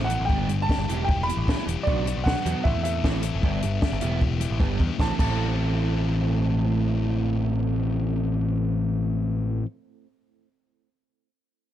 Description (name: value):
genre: indie rock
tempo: 153 BPM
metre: 4/4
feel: straight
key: A dorian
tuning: A4 = 444 Hz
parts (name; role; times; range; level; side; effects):
- bright upright piano; melody; 0.0-9.6 s; D5 to B5; -31 LUFS; right 1 dB; digital delay
- crunchy overdriven guitar; riff; 0.0-9.7 s; A2 to G4; -31 LUFS; right 10 dB; ensemble chorus
- sludgy distorted guitar; riff; 0.0-9.7 s; E2 to A4; -28 LUFS; left 5 dB; overdrive
- growling picked electric bass; bass; 0.0-9.6 s; E1 to E2; -27 LUFS; equal; overdrive
- compact cocktail drum kit; drums; 0.1-5.3 s; crash cymbal, hi-hat, kick drum, snare drum, toms; -26 LUFS; equal; none
room: little or no reverb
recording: dark, warm production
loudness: -22 LUFS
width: side -12 dB against mid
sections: 0.0-5.0 A section; 5.0-8.2 B section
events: drum fill 4.6-5.0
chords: 0.3 G; 0.9 Em; 1.9 Bm; 2.6 Am; 3.4 G; 4.0 Em; 4.6 G; 5.0 Am